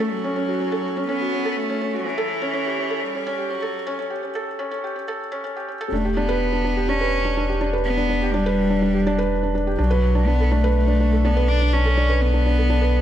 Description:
piano and strings electronica; 124 BPM; 4/4; straight; E dorian; A4 = 440 Hz
warm cello; melody; 0.0-13.0 s; E3 to D4; -24 LUFS; left 1 dB; ping-pong delay
felt-muted upright piano; riff; 0.0-13.0 s; C#4 to B4; -24 LUFS; right 1 dB; ping-pong delay
warm sub bass; bass; 5.9-13.0 s; E1 to B1; -21 LUFS; equal
moderate concert hall reverb, RT60 1.8 s, small room ambience; high-pass filter; -19 LUFS; side -11 dB against mid
0.0-5.9 A section; 5.9-13.0 B section
build-up 0.0-5.9; break 4.0-5.9; drop 5.9-13.0
0.0 F#m; 2.0 A7; 5.9 Em7; 9.8 Bm7

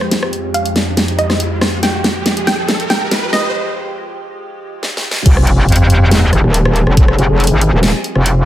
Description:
heavy wobble dubstep; 140 BPM; 4/4; half-time; F minor; A4 = 440 Hz
wide unison pluck; melody; 0.0-3.5 s; C5 to G5; -20 LUFS; right 1 dB; dub echo
evolving wavetable pad; sustained chords; 0.0-8.4 s; F2 to Ab4; -22 LUFS; equal; chorus, built-in reverb, sidechain pumping
dubstep drum kit; drums; 0.0-8.3 s; crash cymbal, hi-hat, rim click, snare drum; -17 LUFS; equal; small room ambience
riser and sub drop; sound effects; 0.3-7.0 s; -20 LUFS; equal
metallic wobble bass; bass; 5.3-8.4 s; F1 to F2; -10 LUFS; equal; chorus, overdrive
electronic kick drum; drums; 5.3-7.1 s; -10 LUFS; equal; small room ambience
metallic wobble bass; bass; 6.4-7.9 s; Eb1 to F1; -12 LUFS; equal; distortion, chorus, overdrive
light reverb; high-pass filter; -11 LUFS; side -13 dB against mid
0.0-5.3 A section; 5.3-8.4 B section
build-up 0.0-5.3; drum fill 0.0-3.5, 4.8-5.3; filter sweep 0.0-5.3; riser 0.3-3.5; break 3.5-5.3; drop 5.3-8.4; impact 5.3-7.0
0.0 Fmadd9

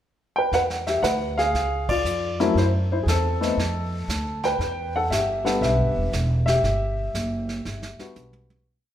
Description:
jazz piano trio; 118 BPM; 4/4; swing 67% on 8ths; E minor; A4 = 441 Hz
warm baby grand piano; melody; 0.4-8.6 s; F#3 to G5; -23 LUFS; left 1 dB
upright bass; bass; 0.5-8.7 s; E1 to F#2; -25 LUFS; right 1 dB
vintage brush drum kit; drums; 0.5-8.6 s; brushed snare drum, hi-hat, kick drum, ride cymbal, snare drum, toms; -33 LUFS; right 3 dB
moderate recital hall reverb, RT60 1.5 s; recorded in a church or concert hall; -21 LUFS; side -11 dB against mid
0.0-0.5 pickup bar; 0.5-8.7 A section
band accent 1.8; fade-out 6.6-8.7; drum fill 7.7-8.7
0.0 N.C.; 0.5 E7(no3); 1.5 C#; 2.6 F#m7b5; 3.6 F; 4.6 Em9

